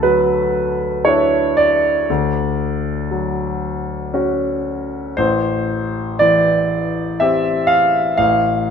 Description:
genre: classical, impressionist solo piano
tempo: 57-62 BPM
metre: 3/4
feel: rubato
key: unclear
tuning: A4 = 440 Hz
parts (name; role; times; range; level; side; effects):
- clear concert grand piano; solo; 0.0-8.7 s; A1 to F5; -15 LUFS; equal; none
room: wet recital hall reverb, RT60 1.8 s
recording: minimal, uncompressed stereo recording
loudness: -15 LUFS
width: side -7 dB against mid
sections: 0.0-8.7 A section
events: none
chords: 0.0 D69; 2.1 Dmaj7; 5.2 Am7; 8.2 Bbmaj7(no3)/A (rootless)

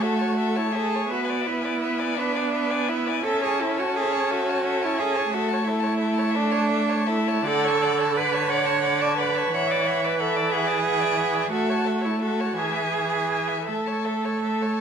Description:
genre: classical, slow romantic movement for string quartet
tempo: 50-62 BPM (dotted quarters)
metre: 6/8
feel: rubato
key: A major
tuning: A4 = 440 Hz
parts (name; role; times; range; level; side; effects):
- rich violin; melody; 0.0-14.8 s; E5 to A5; -30 LUFS; left 9 dB; none
- rich violin; second line; 0.0-14.8 s; A4 to G#5; -28 LUFS; left 4 dB; none
- warm viola; accompaniment; 0.0-14.8 s; D3 to C#4; -27 LUFS; right 2 dB; none
- warm cello; bass; 0.0-14.8 s; D4 to D5; -25 LUFS; right 5 dB; none
room: wet recital hall reverb, RT60 1.4 s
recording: none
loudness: -21 LUFS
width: side -7 dB against mid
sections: 0.0-14.8 A section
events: none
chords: 0.0 A; 1.1 E7/B; 3.2 A/C#; 5.3 A; 7.5 Dmaj7; 9.5 E9; 11.5 A; 12.6 E; 13.7 A

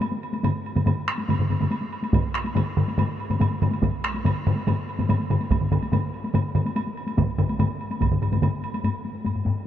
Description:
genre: japanese traditional, taiko drum ensemble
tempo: 143 BPM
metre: 4/4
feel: straight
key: none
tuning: none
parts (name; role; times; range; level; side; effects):
- solo taiko drums; percussion; 0.0-9.6 s; none; -29 LUFS; left 2 dB; none
- woodblock; percussion; 0.0-9.4 s; none; -35 LUFS; right 4 dB; none
- solo taiko drums; percussion; 0.4-9.6 s; none; -26 LUFS; left 3 dB; none
- taiko ensemble; percussion; 0.4-8.5 s; none; -27 LUFS; right 3 dB; none
- taiko ensemble; percussion; 2.1-8.1 s; none; -27 LUFS; right 4 dB; none
room: moderate huge ambient reverb, RT60 7.2 s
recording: dark, warm production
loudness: -22 LUFS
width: side -10 dB against mid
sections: 0.0-8.8 A section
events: speeding up 0.0-9.7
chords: none

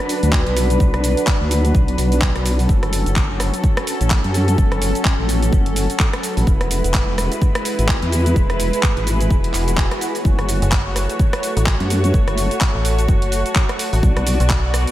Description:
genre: bass house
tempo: 127 BPM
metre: 4/4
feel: swing 58% on 16ths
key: F# minor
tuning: A4 = 442 Hz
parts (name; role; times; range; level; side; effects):
- warm studio string section; sustained chords; 0.0-14.9 s; F#3 to D5; -24 LUFS; equal; sidechain pumping, low-pass filter
- granular cloud pad; texture; 0.0-14.9 s; C#4 to B5; -27 LUFS; left 1 dB; built-in reverb, sidechain pumping
- house drum kit; drums; 0.1-14.9 s; cabasa, handclaps, hi-hat, rim click; -24 LUFS; equal; none
- vowel-sweep wobble bass; bass; 0.2-14.4 s; E1 to F#2; -18 LUFS; equal; chorus, tube saturation, sidechain pumping
- electronic kick drum; drums; 0.3-14.6 s; none; -17 LUFS; equal; none
- swell; sound effects; 9.5-10.2 s; none; -31 LUFS; right 2 dB; none
- metallic FM bass; bass; 10.6-14.9 s; F#1 to B1; -18 LUFS; equal; tube saturation, sidechain pumping
room: light reverb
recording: none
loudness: -15 LUFS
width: side -14 dB against mid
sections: 0.0-14.9 A section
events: swell 9.5-10.2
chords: 0.0 Bm; 2.7 F#m; 6.5 E; 10.2 F#m; 14.0 Bm

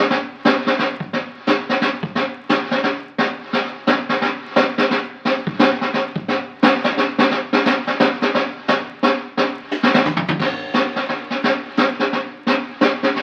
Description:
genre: jazz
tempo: 175 BPM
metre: 3/4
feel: swing 63% on 8ths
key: none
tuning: none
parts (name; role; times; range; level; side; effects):
- vintage brush drum kit; drums; 0.1-13.2 s; brushed snare drum, hi-hat, kick drum, ride cymbal, snare drum, toms; -19 LUFS; equal; none
room: moderate studio reverb, RT60 0.8 s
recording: very old 78 rpm record, vinyl crackle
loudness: -19 LUFS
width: mono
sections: 0.0-2.2 A section; 2.2-10.4 B section; 10.4-13.2 A section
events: drum fill 9.7-10.4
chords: none

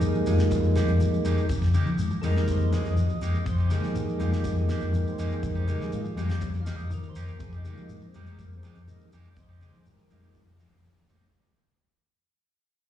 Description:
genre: afrobeat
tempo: 122 BPM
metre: 4/4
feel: straight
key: F minor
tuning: A4 = 440 Hz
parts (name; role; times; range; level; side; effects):
- percussive tonewheel organ; accompaniment; 0.0-10.6 s; G3 to F5; -31 LUFS; right 2 dB; slow rotary speaker, slapback echo
- mellow electric guitar; arpeggios; 0.0-11.1 s; C3 to G3; -33 LUFS; left 6 dB; slapback echo
- fingered electric bass; bass; 0.0-11.2 s; F2 to F3; -28 LUFS; left 1 dB; none
- damped 70s drum kit; drums; 0.0-11.2 s; hi-hat, kick drum, snare drum; -33 LUFS; left 1 dB; none
- shekere; percussion; 0.0-11.3 s; none; -34 LUFS; equal; slapback echo
- electric guitar at the edge of break-up; stabs; 0.3-11.2 s; Ab3 to G4; -40 LUFS; right 5 dB; spring reverb, slapback echo
- congas; percussion; 0.3-11.3 s; none; -37 LUFS; equal; none
room: studio ambience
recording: live gig heard through the venue's PA, recital hall reverb, small room ambience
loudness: -24 LUFS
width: side -11 dB against mid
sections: 0.0-11.3 A section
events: fade-out 0.0-11.3; tonewheel organ solo 0.0-11.3; drum fill 11.0-11.3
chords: 0.0 Fm11

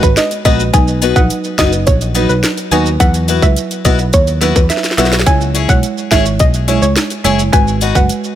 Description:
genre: dancehall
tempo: 106 BPM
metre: 4/4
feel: straight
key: unclear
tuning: A4 = 440 Hz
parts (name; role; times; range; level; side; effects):
- soft round pluck; melody; 0.0-8.1 s; B4 to G#5; -18 LUFS; right 1 dB; chorus, ping-pong delay
- picked steel-string acoustic guitar; arpeggios; 0.0-8.0 s; B3 to C#5; -19 LUFS; left 9 dB; ping-pong delay
- picked electric bass; bass; 0.0-8.1 s; F#1 to E2; -16 LUFS; equal; none
- island pop drum kit; drums; 0.0-8.2 s; hi-hat, kick drum, snare drum; -13 LUFS; equal; none
- maracas; percussion; 0.0-8.4 s; none; -26 LUFS; right 9 dB; none
- downlifter; sound effects; 0.0-0.7 s; none; barely audible; none; none
- buzzing marimba with medium mallets; accompaniment; 0.5-8.1 s; F#3 to C#5; -18 LUFS; right 4 dB; sidechain pumping
room: little or no reverb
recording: none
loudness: -10 LUFS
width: side -11 dB against mid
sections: 0.0-8.4 A section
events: drum fill 4.7-5.3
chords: 0.0 G#m7; 0.7 B; 3.0 Esus2; 5.3 C#m; 7.5 G#m7

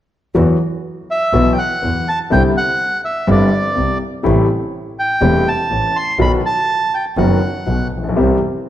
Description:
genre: tango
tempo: 123 BPM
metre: 4/4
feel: rubato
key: E minor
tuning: A4 = 440 Hz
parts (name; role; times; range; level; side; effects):
- warm concert grand piano; accompaniment; 0.3-8.4 s; E1 to G4; -17 LUFS; left 2 dB; none
- clear double bass; bass; 0.4-8.4 s; E1 to E2; -18 LUFS; right 1 dB; none
- bandoneon; melody; 1.1-7.9 s; D5 to C6; -18 LUFS; right 1 dB; none
room: wet recital hall reverb, RT60 1.7 s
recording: none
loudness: -14 LUFS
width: side -12 dB against mid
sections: 0.4-8.7 A section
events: none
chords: 0.4 Esus2; 2.3 Cadd9; 4.2 Am7; 6.2 B; 8.2 C

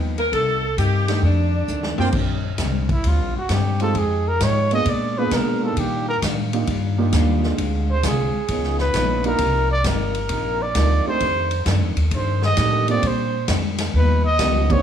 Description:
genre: jazz, big band swing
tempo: 132 BPM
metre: 4/4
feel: swing 67% on 8ths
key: Bb major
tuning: A4 = 442 Hz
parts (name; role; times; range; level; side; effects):
- vintage hollow-body jazz guitar; accompaniment; 0.0-14.7 s; F2 to G4; -28 LUFS; left 5 dB; none
- upright bass; bass; 0.0-14.8 s; G1 to Cb3; -21 LUFS; equal; none
- clear saxophone section; melody; 0.2-2.0 s; D4 to A#4; -23 LUFS; equal; none
- swinging big-band drum kit; drums; 0.2-14.8 s; crash cymbal, hi-hat, kick drum, ride cymbal, snare drum, toms; -26 LUFS; left 1 dB; none
- warm baby grand piano; accompaniment; 1.1-14.8 s; Bb2 to Ab4; -25 LUFS; right 6 dB; none
- bright trumpet section; stabs; 2.0-2.1 s; Bb4 to G5; -29 LUFS; right 3 dB; none
- breathy trumpet; melody; 2.9-14.8 s; E4 to D#5; -22 LUFS; right 1 dB; none
- mellow trombone section; sustained chords; 3.8-14.8 s; D3 to G4; -31 LUFS; equal; none
room: light reverb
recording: small room ambience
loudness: -18 LUFS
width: side -9 dB against mid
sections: 0.0-2.1 A section; 2.1-14.8 B section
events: drum fill 1.7-2.1; trumpet solo 2.1-14.8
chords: 0.3 Cm7; 1.2 F13; 2.1 Bb69; 4.0 Fm9; 4.9 Bb7b9; 5.8 Ebmaj9; 7.6 Dm7b5; 8.5 Db9; 9.4 Cm11; 11.2 F13; 13.0 Bb69; 13.9 G7alt

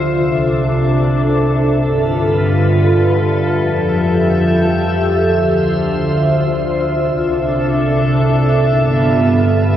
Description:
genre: hip hop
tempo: free time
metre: none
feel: none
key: unclear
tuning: A4 = 440 Hz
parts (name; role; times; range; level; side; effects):
- glassy FM pad; solo; 0.0-9.8 s; C2 to E5; -12 LUFS; equal; ensemble chorus, built-in reverb
room: moderate lush hall reverb, RT60 1.8 s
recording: none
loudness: -12 LUFS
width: side -10 dB against mid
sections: 0.0-6.9 A section; 6.9-9.8 B section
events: none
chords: 0.1 C69; 1.8 G13; 3.5 Fmaj9; 5.2 Dm7; 6.9 C69; 8.7 G13

